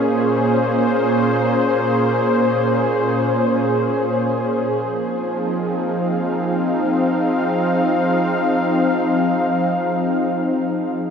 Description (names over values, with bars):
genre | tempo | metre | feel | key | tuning
ambient | free time | none | none | unclear | A4 = 441 Hz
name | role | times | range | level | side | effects
warm analog pad | solo | 0.0-11.1 s | Bb2 to F5 | -16 LUFS | equal | chorus, diffuse ambient delay
room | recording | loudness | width
wet huge ambient reverb, RT60 8.3 s | none | -16 LUFS | side -6 dB against mid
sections
0.0-11.0 A section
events
none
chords
0.0 Bbm7; 4.7 Fm7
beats
free time